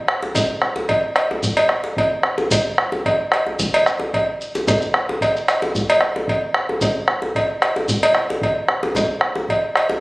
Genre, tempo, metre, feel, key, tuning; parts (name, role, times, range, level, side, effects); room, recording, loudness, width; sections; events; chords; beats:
west african traditional, West African drum ensemble; 112 BPM; 4/4; straight
bombo; percussion; 0.1-9.9 s; -22 LUFS; equal
djembe; percussion; 0.1-10.0 s; -25 LUFS; equal
cowbell; percussion; 0.4-9.9 s; -19 LUFS; equal
shekere; percussion; 0.4-9.1 s; -25 LUFS; equal
wet recital hall reverb, RT60 1.4 s; recorded on a phone in the room, studio reverb; -17 LUFS; side -22 dB against mid
0.0-10.0 A section
0.35 0.90 | 1.44 1.98 2.52 3.06 | 3.60 4.13 4.67 5.21 | 5.75 6.28 6.82 7.36 | 7.89 8.43 8.96 9.49